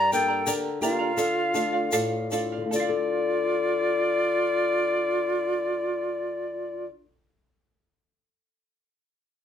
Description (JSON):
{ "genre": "andean folk, Andean ensemble", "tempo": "71-88 BPM", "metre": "2/4", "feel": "straight", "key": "D minor", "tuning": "A4 = 440 Hz", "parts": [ { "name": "reedy quena", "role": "melody", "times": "0.0-6.9 s", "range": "D5 to Bb5", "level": "-26 LUFS", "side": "left 3 dB", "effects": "none" }, { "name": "breathy large quena", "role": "second line", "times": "0.0-6.9 s", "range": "F4 to D5", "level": "-29 LUFS", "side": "right 5 dB", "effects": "none" }, { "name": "charango", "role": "accompaniment", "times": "0.0-7.2 s", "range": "G4 to Bb5", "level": "-29 LUFS", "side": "right 5 dB", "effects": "none" }, { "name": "flamenco guitar", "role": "accompaniment", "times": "0.0-7.2 s", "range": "G2 to A4", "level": "-31 LUFS", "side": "left 6 dB", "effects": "none" }, { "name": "egg shaker", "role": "percussion", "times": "0.1-3.1 s", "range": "none", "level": "-34 LUFS", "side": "left 4 dB", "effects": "none" } ], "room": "light reverb", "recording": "none", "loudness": "-23 LUFS", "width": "side -9 dB against mid", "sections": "0.0-2.7 A section; 2.7-6.1 B section", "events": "slowing down 0.0-2.7", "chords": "0.0 Gm; 1.2 Dm" }